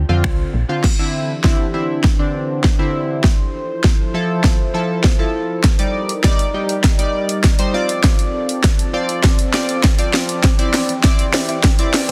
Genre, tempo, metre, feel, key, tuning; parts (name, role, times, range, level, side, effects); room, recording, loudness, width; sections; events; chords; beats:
dance-pop; 100 BPM; 4/4; straight; A4 = 439 Hz
solid FM bass; bass; 0.0-0.6 s; Bb1 to F2; -19 LUFS; equal; sidechain pumping
chorused retro synth keys; accompaniment; 0.1-12.1 s; D3 to D5; -24 LUFS; equal; sidechain pumping
house drum kit; drums; 0.2-12.1 s; crash cymbal, finger snaps, hi-hat, kick drum, snare drum; -17 LUFS; equal; overdrive, soft clipping on snare
sweeping resonant pad; sustained chords; 0.8-12.1 s; E3 to D5; -27 LUFS; equal; chorus, phaser, sidechain pumping
direct-recorded clean electric guitar; riff; 10.4-12.1 s; C4 to E4; -29 LUFS; equal
light reverb; dense, heavily limited modern master; -17 LUFS; mono
0.8-12.1 A section
build-up 0.8-12.1; drum fill 0.8-12.1
0.0 Dm7; 0.8 Cadd9; 3.2 Fmaj7; 5.6 Ebmaj7; 7.7 Dm7; 10.4 Cadd9
0.24 | 0.84 1.44 2.04 2.64 | 3.24 3.84 4.44 5.04 | 5.64 6.24 6.84 7.44 | 8.04 8.64 9.24 9.84 | 10.44 11.04 11.64